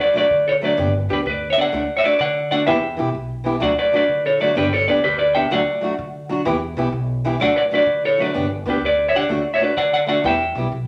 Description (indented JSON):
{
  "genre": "highlife guitar band",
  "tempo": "127 BPM (dotted quarters)",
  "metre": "12/8",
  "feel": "straight",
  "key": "D major",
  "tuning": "A4 = 440 Hz",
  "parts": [
    { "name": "semi-hollow electric guitar", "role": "melody", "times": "0.0-10.9 s", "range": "G4 to G5", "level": "-20 LUFS", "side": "equal", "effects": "none" },
    { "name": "fingerpicked acoustic archtop guitar", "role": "accompaniment", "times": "0.1-10.7 s", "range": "E3 to G4", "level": "-25 LUFS", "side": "equal", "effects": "none" },
    { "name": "upright bass", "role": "bass", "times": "0.3-10.9 s", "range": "G1 to D3", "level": "-30 LUFS", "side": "equal", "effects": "none" }
  ],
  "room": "wet large studio reverb, RT60 0.9 s",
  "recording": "none",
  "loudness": "-19 LUFS",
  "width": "mono",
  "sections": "0.0-10.9 A section",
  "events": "none",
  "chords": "0.0 D; 0.8 G; 1.7 D; 2.7 Em; 3.6 D; 4.6 G; 5.5 D; 6.5 Em; 7.4 D; 8.4 G; 9.3 D; 10.2 Em"
}